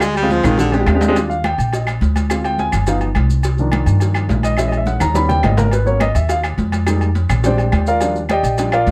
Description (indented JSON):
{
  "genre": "Afro-Cuban jazz",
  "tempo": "210 BPM",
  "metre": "4/4",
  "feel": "straight",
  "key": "Eb major",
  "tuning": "A4 = 440 Hz",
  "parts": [
    { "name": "bright baritone saxophone", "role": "second line", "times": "0.0-0.9 s", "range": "D3 to Ab3", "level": "-21 LUFS", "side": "equal", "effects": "none" },
    { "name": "upright bass", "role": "bass", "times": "0.0-8.9 s", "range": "G1 to G2", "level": "-20 LUFS", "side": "equal", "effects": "none" },
    { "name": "agogo bells and timbales", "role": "percussion", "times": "0.0-8.9 s", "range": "none", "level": "-28 LUFS", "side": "equal", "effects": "none" },
    { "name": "claves", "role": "percussion", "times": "0.0-8.9 s", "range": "none", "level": "-31 LUFS", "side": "equal", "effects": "none" },
    { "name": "congas", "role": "percussion", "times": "0.0-8.9 s", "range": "none", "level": "-27 LUFS", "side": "equal", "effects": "none" },
    { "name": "cowbell and bongos", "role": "percussion", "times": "0.0-8.9 s", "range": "none", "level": "-29 LUFS", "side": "equal", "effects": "none" },
    { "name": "maracas", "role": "percussion", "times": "0.0-8.9 s", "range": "none", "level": "-38 LUFS", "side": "equal", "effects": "none" },
    { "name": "warm grand piano", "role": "accompaniment", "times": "0.2-8.9 s", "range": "Eb3 to Cb6", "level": "-20 LUFS", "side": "equal", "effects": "none" }
  ],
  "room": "little or no reverb",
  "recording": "close, detailed microphones",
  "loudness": "-16 LUFS",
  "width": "mono",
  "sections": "0.0-1.2 A section; 1.2-8.9 A section",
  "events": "baritone saxophone solo 0.0-1.2; drum fill 0.4-1.2, 4.9-5.7; grand piano solo 1.2-8.9",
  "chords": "0.0 Dm7b5; 0.6 Bb13; 1.2 Ebmaj9; 2.3 Dm7b5; 2.9 Gaug7; 3.4 Cm11; 4.6 Bbm7b5; 5.2 Eb7b13; 5.7 Abm11; 6.9 Fm11; 7.4 Bb13; 8.0 Ebmaj9"
}